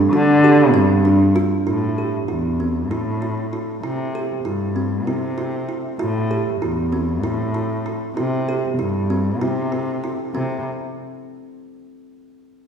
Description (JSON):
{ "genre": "contemporary instrumental, chamber music in an uneven meter", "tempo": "194 BPM (eighths)", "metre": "7/8", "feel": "straight", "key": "C major", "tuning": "A4 = 442 Hz", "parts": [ { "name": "kalimba", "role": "arpeggios", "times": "0.0-10.6 s", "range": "C4 to G4", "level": "-21 LUFS", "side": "right 2 dB", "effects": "none" }, { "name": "muted cello", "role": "bass", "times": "0.1-10.6 s", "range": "E2 to D3", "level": "-20 LUFS", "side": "left 1 dB", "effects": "none" } ], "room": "wet scoring stage reverb, RT60 1.8 s", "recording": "recorded in a church or concert hall", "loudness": "-18 LUFS", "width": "side -7 dB against mid", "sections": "0.0-1.7 A section; 1.7-10.3 B section; 10.3-12.5 C section", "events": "none", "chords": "0.0 G7sus4; 1.7 Am7; 3.8 C; 6.0 Am7; 8.2 C; 10.3 N.C." }